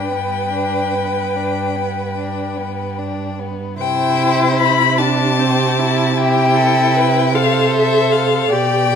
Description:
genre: classical, slow romantic movement for string quartet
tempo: 50 BPM (dotted quarters)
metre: 12/8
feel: rubato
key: G major, C major from 3.8 s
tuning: A4 = 440 Hz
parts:
  - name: rich violin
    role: melody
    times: 0.0-9.0 s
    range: E5 to B5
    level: -18 LUFS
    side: left 7 dB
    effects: none
  - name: rich violin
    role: second line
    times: 0.0-9.0 s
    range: B3 to D5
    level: -23 LUFS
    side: left 3 dB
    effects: none
  - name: warm viola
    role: accompaniment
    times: 0.0-9.0 s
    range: C4 to B4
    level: -20 LUFS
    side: right 2 dB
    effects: none
  - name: warm cello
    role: bass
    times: 0.1-9.0 s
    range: G2 to C3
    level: -20 LUFS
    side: right 5 dB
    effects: none
room: wet recital hall reverb, RT60 1.8 s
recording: none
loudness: -14 LUFS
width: side -7 dB against mid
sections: 0.0-3.8 A section; 3.8-9.0 B section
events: none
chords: 0.0 G; 3.8 C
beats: 0.12 1.36 2.57 | 3.79 4.98 6.16 7.35 | 8.51

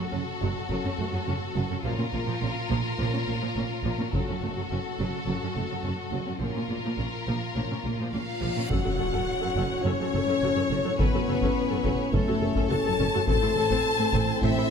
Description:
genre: cinematic, epic orchestral film score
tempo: 105 BPM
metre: 4/4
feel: straight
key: unclear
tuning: A4 = 440 Hz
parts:
  - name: clear symphonic violin section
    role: melody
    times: 0.0-14.7 s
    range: A4 to C#5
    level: -37 LUFS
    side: left 4 dB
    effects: none
  - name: rich symphonic violin section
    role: second line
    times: 0.0-14.7 s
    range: E#4 to A5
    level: -32 LUFS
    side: left 4 dB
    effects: none
  - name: dark symphonic viola section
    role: accompaniment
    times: 0.0-14.6 s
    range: E#3 to A4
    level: -36 LUFS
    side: equal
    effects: none
  - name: warm symphonic cello section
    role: bass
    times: 0.0-14.6 s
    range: F#2 to A#2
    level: -32 LUFS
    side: right 3 dB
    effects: none
  - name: clear symphonic double bass section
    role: bass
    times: 0.1-14.5 s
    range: F#1 to A#1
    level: -32 LUFS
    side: right 3 dB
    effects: none
  - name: warm French horn section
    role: sustained chords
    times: 0.7-14.7 s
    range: A3 to A#4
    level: -30 LUFS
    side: left 5 dB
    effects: none
  - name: taiko ensemble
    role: drums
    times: 4.1-5.2, 8.7-14.7 s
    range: none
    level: -31 LUFS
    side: left 1 dB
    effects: none
  - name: reverse cymbal and impact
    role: sound effects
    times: 8.3-11.0 s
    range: none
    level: -38 LUFS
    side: equal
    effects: none
  - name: warm trombone section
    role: sustained chords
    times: 8.7-14.7 s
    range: A2 to C#4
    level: -33 LUFS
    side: right 1 dB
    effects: none
room: moderate concert hall reverb, RT60 2.2 s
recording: none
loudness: -24 LUFS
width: side -6 dB against mid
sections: 0.0-8.7 A section; 8.7-14.7 B section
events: build-up 0.0-8.7; reverse cymbal 8.3-8.7; impact 8.7-11.0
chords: 0.0 F#m; 1.8 A#m; 4.1 F#m; 6.4 A#m; 8.7 F#m; 13.3 Am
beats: 0.13 0.70 1.27 | 1.85 2.42 2.99 3.56 | 4.13 4.70 5.27 5.85 | 6.42 6.99 7.56 8.13 | 8.70 9.27 9.85 10.42 | 10.99 11.56 12.13 12.70 | 13.27 13.85 14.42

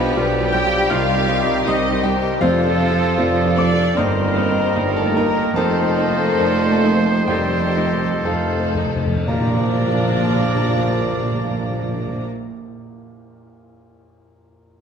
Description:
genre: classical, romantic movement for piano and orchestra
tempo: 56-82 BPM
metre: 4/4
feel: rubato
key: Bb major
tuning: A4 = 438 Hz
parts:
  - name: clear chamber violin section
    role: melody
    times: 0.0-12.3 s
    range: F4 to Bb5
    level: -32 LUFS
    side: left 2 dB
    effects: none
  - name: warm concert grand piano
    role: melody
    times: 0.0-14.8 s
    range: B1 to G6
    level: -23 LUFS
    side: left 2 dB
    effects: none
  - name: dark chamber violin section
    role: second line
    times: 0.0-12.3 s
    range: F4 to G5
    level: -29 LUFS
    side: left 6 dB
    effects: none
  - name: mellow small flute group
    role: second line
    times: 0.0-12.2 s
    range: F4 to G5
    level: -30 LUFS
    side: left 2 dB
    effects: none
  - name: warm clarinet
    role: second line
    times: 0.0-12.3 s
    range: Bb4 to F5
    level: -29 LUFS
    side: left 2 dB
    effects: none
  - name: warm bassoon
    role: accompaniment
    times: 0.0-12.3 s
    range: Eb3 to F3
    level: -28 LUFS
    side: right 1 dB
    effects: none
  - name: mellow French horn section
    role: sustained chords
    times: 0.0-12.3 s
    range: A3 to F4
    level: -29 LUFS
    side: left 3 dB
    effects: none
  - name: warm trombone section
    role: sustained chords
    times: 0.0-12.3 s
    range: Bb2 to G3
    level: -29 LUFS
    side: right 4 dB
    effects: none
  - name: warm trumpet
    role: stabs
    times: 0.0-12.3 s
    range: G4 to D5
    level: -27 LUFS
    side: right 2 dB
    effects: none
  - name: mellow tuba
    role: bass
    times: 0.0-12.3 s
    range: F1 to C2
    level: -28 LUFS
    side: right 4 dB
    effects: none
  - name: rich chamber cello section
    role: bass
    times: 0.0-12.2 s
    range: F3 to G4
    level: -25 LUFS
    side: right 3 dB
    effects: none
  - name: warm studio double bass section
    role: bass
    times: 0.0-12.3 s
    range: Bb1 to G2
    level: -27 LUFS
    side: right 4 dB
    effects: none
  - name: warm oboe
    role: second line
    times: 0.2-12.2 s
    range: G4 to D5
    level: -30 LUFS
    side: right 1 dB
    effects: none
  - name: rich studio viola section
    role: accompaniment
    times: 0.2-12.2 s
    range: G3 to F4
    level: -28 LUFS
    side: right 1 dB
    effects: none
  - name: cymbal swell and tam-tam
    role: percussion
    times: 5.6-12.3 s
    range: none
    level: -36 LUFS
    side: left 4 dB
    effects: none
  - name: timpani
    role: percussion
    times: 5.6-12.3 s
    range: F2 to Bb2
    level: -25 LUFS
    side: equal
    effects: none
room: wet recital hall reverb, RT60 1.7 s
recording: none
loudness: -16 LUFS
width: side -7 dB against mid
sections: 0.0-9.3 A section; 9.3-13.2 B section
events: slowing down 0.9-9.3; timpani fill 7.3-9.3; band accent 9.3-10.2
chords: 0.0 G7/B; 0.9 Cm; 2.4 F; 4.0 Eb/G; 5.6 F7sus4; 7.3 F9; 9.3 Bb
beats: 0.16 0.91 1.67 | 2.41 3.18 3.97 4.76 | 5.56 6.39 7.29 8.26 | 9.28 10.24 11.19 12.18

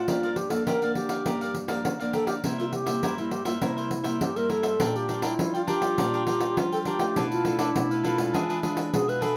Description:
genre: samba and choro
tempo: 102 BPM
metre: 4/4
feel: straight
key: unclear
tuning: A4 = 441 Hz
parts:
  - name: mellow alto flute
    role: melody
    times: 0.0-9.4 s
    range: D4 to B4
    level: -31 LUFS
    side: equal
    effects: none
  - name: cavaquinho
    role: accompaniment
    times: 0.0-9.4 s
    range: D4 to G5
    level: -36 LUFS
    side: equal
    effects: none
  - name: nylon-string guitar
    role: accompaniment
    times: 0.0-9.4 s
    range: G2 to F4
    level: -34 LUFS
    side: equal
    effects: none
  - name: pandeiro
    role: percussion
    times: 0.1-9.4 s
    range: none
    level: -33 LUFS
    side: equal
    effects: none
  - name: mellow clarinet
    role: second line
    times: 4.8-9.2 s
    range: D4 to F4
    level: -34 LUFS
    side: equal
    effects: none
room: moderate studio reverb, RT60 0.6 s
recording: none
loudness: -27 LUFS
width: mono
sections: 0.0-4.8 A section; 4.8-9.4 B section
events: none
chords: 0.1 Gm7; 2.4 C7; 4.8 Bb6; 7.2 Bm7b5; 8.3 E7b9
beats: | 0.08 0.67 1.26 1.85 | 2.44 3.03 3.62 4.21 | 4.80 5.39 5.98 6.57 | 7.16 7.75 8.34 8.93

